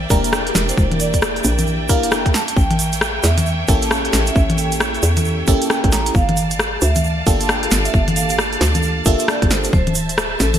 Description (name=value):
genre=UK garage, two-step garage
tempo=134 BPM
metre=4/4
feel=swing 62% on 16ths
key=unclear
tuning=A4 = 441 Hz
part: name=rich studio violin section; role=sustained chords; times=0.0-10.6 s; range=Bb3 to A5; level=-26 LUFS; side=right 1 dB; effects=sidechain pumping
part: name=hollow knocking FM bass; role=bass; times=0.0-10.6 s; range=D1 to E2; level=-20 LUFS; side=equal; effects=none
part: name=FM electric piano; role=stabs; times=0.1-9.7 s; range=Bb3 to Bb4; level=-23 LUFS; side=equal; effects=chorus, phaser
part: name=electronic kick drum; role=drums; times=0.1-9.8 s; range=none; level=-17 LUFS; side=equal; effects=none
part: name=garage drum kit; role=drums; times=0.1-10.6 s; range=congas, hi-hat, rim click, snare drum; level=-20 LUFS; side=left 1 dB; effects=gated reverb
part: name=egg shaker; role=percussion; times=0.1-10.6 s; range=none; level=-27 LUFS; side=right 6 dB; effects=none
part: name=vibraphone with medium mallets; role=melody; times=0.7-10.6 s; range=A4 to Bb5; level=-26 LUFS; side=right 3 dB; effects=ping-pong delay
room=light reverb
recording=bright 1980s-style digital production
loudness=-14 LUFS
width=side -10 dB against mid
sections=0.0-10.6 A section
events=none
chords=0.0 Em7b5; 2.3 A7b9; 6.1 Gm7; 9.7 D7(no3)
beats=0.33 | 0.78 1.22 1.67 2.12 | 2.57 3.01 3.46 3.91 | 4.36 4.80 5.25 5.70 | 6.15 6.60 7.04 7.49 | 7.94 8.39 8.84 9.28 | 9.73 10.18